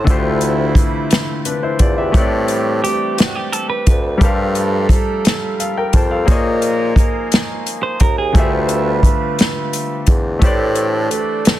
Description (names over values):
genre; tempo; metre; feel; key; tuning
slow six-eight R&B; 58 BPM (dotted quarters); 6/8; straight; unclear; A4 = 436 Hz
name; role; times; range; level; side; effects
clean electric guitar; second line; 0.0-4.2, 7.8-8.5 s; F#4 to B#4; -21 LUFS; right 5 dB; none
warm concert grand piano; accompaniment; 0.0-11.6 s; D3 to A5; -20 LUFS; left 3 dB; none
warm bassoon; bass; 0.0-11.2 s; D2 to A#2; -20 LUFS; equal; none
mellow horn section; stabs; 0.1-11.6 s; C3 to B4; -24 LUFS; right 7 dB; none
warm soul drum kit; drums; 0.1-11.6 s; hi-hat, kick drum, snare drum; -14 LUFS; equal; none
room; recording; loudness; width
small room ambience; dense, heavily limited modern master; -14 LUFS; side -14 dB against mid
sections
0.1-11.6 A section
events
none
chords
0.1 Dm11; 2.1 Am11; 4.2 Gm11; 6.3 A#m11; 8.3 Dm11; 10.4 Am11